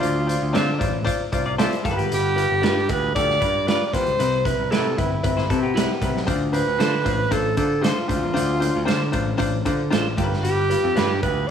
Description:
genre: uptempo 1960s-style soul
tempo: 115 BPM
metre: 4/4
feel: straight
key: unclear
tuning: A4 = 436 Hz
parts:
  - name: breathy alto saxophone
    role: melody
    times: 0.0-11.5 s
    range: E4 to D5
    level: -23 LUFS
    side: right 1 dB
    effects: none
  - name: clear grand piano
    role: accompaniment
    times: 0.0-11.4 s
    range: G2 to A5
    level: -26 LUFS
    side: left 5 dB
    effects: none
  - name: modern bright picked electric bass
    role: bass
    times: 0.0-11.5 s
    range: G1 to D3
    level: -25 LUFS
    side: right 1 dB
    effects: none
  - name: raw garage drum kit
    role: drums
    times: 0.0-11.3 s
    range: hi-hat, kick drum, snare drum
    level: -26 LUFS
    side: right 1 dB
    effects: none
  - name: clean electric guitar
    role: stabs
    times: 0.5-11.1 s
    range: C4 to C5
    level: -30 LUFS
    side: right 6 dB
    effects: spring reverb
  - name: semi-hollow electric guitar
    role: riff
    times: 1.5-6.2 s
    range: B3 to D5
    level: -28 LUFS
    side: left 7 dB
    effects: none
  - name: congas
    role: percussion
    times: 6.5-11.1 s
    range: none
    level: -34 LUFS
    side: right 14 dB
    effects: none
room: light reverb, small room ambience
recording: none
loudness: -19 LUFS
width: side -8 dB against mid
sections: 0.0-11.5 A section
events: grand piano fill 1.3-2.1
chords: 0.0 Dm7; 1.9 G7; 4.2 Cmaj7; 6.3 Dm7; 10.2 G7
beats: | 0.03 0.55 1.07 1.59 | 2.11 2.63 3.15 3.67 | 4.19 4.71 5.23 5.75 | 6.28 6.80 7.32 7.84 | 8.36 8.88 9.40 9.92 | 10.44 10.96 11.48

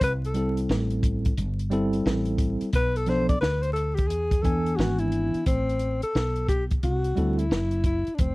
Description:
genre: hip hop, jazz-hop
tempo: 88 BPM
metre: 4/4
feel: swing 64% on 16ths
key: A dorian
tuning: A4 = 439 Hz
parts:
  - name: breathy alto saxophone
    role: melody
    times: 0.0-8.3 s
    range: C4 to D5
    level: -27 LUFS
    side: left 2 dB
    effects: none
  - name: woody fretless electric bass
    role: bass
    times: 0.0-8.3 s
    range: F1 to E2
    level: -27 LUFS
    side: equal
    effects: none
  - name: compact cocktail drum kit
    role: drums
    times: 0.0-8.3 s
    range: hi-hat, kick drum, snare drum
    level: -26 LUFS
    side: equal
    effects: none
  - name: tine electric piano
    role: accompaniment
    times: 0.3-7.4 s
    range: E3 to G#5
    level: -26 LUFS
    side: equal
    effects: medium stereo tremolo
room: small room ambience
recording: dry, close 1970s-style studio recording, vinyl crackle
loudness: -22 LUFS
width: side -22 dB against mid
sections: 0.0-5.5 A section; 5.5-8.3 B section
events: alto saxophone solo 0.0-5.5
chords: 0.0 C6; 2.7 Bm7b5; 4.1 E7; 5.5 Am7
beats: | 0.01 0.69 1.37 2.06 | 2.74 3.42 4.10 4.78 | 5.46 6.15 6.83 7.51 | 8.19

